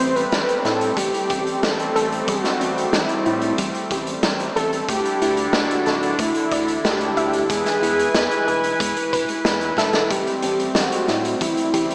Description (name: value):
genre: synthwave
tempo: 92 BPM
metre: 4/4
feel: straight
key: A dorian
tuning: A4 = 437 Hz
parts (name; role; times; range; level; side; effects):
- unison lead; melody; 0.0-11.9 s; E4 to C5; -25 LUFS; equal; vintage 12-bit sampler grit, tape echo
- warm analog pad; sustained chords; 0.0-11.9 s; D3 to G#5; -26 LUFS; equal; chorus, sidechain pumping
- soft round pluck; arpeggios; 0.0-11.9 s; G3 to E5; -31 LUFS; equal; none
- round analog bass; bass; 0.0-11.9 s; D1 to A2; -34 LUFS; equal; none
- raw garage drum kit; drums; 0.0-11.9 s; hi-hat, snare drum; -27 LUFS; equal; none
- kick drum; drums; 1.0-11.9 s; none; -37 LUFS; equal; none
room: wet lush hall reverb, RT60 2.6 s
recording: dreamy mix soaked in reverb, small speaker sound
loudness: -21 LUFS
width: mono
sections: 0.0-11.9 A section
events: drum fill 9.8-10.1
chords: 0.0 Am7; 4.9 Dsus2; 7.5 E; 10.1 Am7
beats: 0.32 0.97 1.63 | 2.28 2.93 3.58 4.24 | 4.89 5.54 6.19 6.84 | 7.50 8.15 8.80 9.45 | 10.11 10.76 11.41